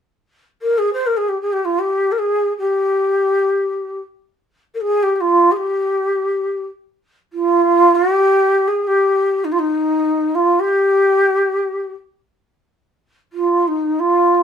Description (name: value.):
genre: Turkish makam ensemble.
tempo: free time.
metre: none.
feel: none.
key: G makam kurdi.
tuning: A4 = 438 Hz.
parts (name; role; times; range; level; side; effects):
breathy ney; solo; 0.6-14.4 s; Eb4 to C5; -14 LUFS; equal; none.
room: moderate studio reverb, RT60 0.6 s.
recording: minimal, uncompressed stereo recording.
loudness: -15 LUFS.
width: side -8 dB against mid.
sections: 0.1-14.4 A section.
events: none.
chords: none.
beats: free time.